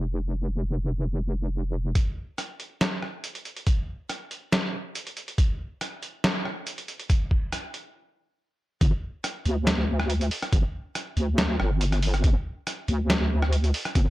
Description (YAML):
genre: deep dubstep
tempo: 140 BPM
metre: 4/4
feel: half-time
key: unclear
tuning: A4 = 441 Hz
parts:
  - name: wobble bass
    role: bass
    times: 0.0-1.9, 8.8-14.1 s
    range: F1 to D2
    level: -24 LUFS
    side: equal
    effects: chorus
  - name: electronic kick drum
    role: drums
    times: 2.0-14.0 s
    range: none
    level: -22 LUFS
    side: equal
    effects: none
  - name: trip hop sampler-style drum kit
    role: drums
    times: 2.0-14.0 s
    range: hi-hat, rim click, snare drum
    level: -28 LUFS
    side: equal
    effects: low-pass filter on hats, low-pass filter on snare, low-pass filter on room
room: little or no reverb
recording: dark, warm production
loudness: -24 LUFS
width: side -17 dB against mid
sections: 0.0-2.0 A section; 2.0-8.8 B section; 8.8-14.1 C section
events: build-up 2.0-8.8; stop 8.0-8.8; drop 8.8-14.1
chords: none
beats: | 0.24 0.67 1.10 1.52 | 1.95 2.38 2.81 3.24 | 3.67 4.10 4.53 4.95 | 5.38 5.81 6.24 6.67 | 7.10 7.53 7.95 8.38 | 8.81 9.24 9.67 10.10 | 10.53 10.95 11.38 11.81 | 12.24 12.67 13.10 13.53 | 13.95